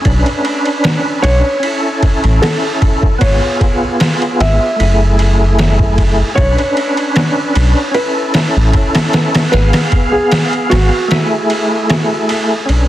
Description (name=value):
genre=trip hop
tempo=76 BPM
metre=4/4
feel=swing 53% on 16ths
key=F# minor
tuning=A4 = 439 Hz
part: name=percussive tonewheel organ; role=accompaniment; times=0.0-12.9 s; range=A3 to E#5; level=-16 LUFS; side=equal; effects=overdrive, chorus vibrato, stopped rotary speaker, tremolo, low-pass filter, tape echo
part: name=round analog bass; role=bass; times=0.1-12.9 s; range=F#1 to B1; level=-12 LUFS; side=equal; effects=none
part: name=trip hop sampler-style drum kit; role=drums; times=0.1-12.9 s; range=kick drum, ride cymbal, snare drum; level=-15 LUFS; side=equal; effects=high-pass filter on cymbals, high-pass filter on snare, high-pass filter on kick
part: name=felt-muted upright piano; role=melody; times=1.2-12.2 s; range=F#4 to E5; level=-19 LUFS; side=equal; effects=tape echo
room=light reverb, digital ambience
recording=dense, heavily limited modern master, vinyl crackle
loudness=-10 LUFS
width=side -14 dB against mid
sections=0.0-12.7 A section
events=break 11.1-12.7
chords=0.1 Bmadd9; 1.6 A; 3.2 C#7/G#; 4.8 F#m7; 6.4 Bmadd9; 8.0 A; 9.5 G#m6; 11.1 F#m7